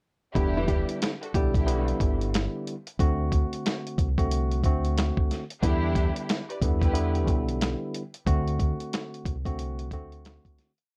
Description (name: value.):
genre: hip hop, boom-bap hip-hop.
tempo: 91 BPM.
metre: 4/4.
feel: swing 61% on 16ths.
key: E minor.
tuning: A4 = 440 Hz.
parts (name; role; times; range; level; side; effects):
tine electric piano; accompaniment; 0.3-10.7 s; D3 to F#4; -34 LUFS; equal; cassette tape, high-pass filter, low-pass filter.
warm studio string section; stabs; 0.3-7.3 s; D4 to D5; -37 LUFS; equal; high-pass filter, low-pass filter, analog delay.
deep dub fingered electric bass; bass; 0.4-10.4 s; E1 to E2; -31 LUFS; equal; none.
dusty soul sampler-style drum kit; drums; 0.4-10.9 s; hi-hat, kick drum, snare drum; -29 LUFS; equal; none.
nylon-string guitar; melody; 0.6-1.5 s; E3 to G4; -35 LUFS; equal; high-pass filter, low-pass filter, analog delay.
room: light reverb.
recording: worn, warbling old tape, cassette tape, warbly pitch drift.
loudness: -27 LUFS.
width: mono.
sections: 0.4-10.9 hook.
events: fade-out 8.3-10.9.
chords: 0.4 Em7; 3.0 D7; 5.6 Em7; 8.3 D7.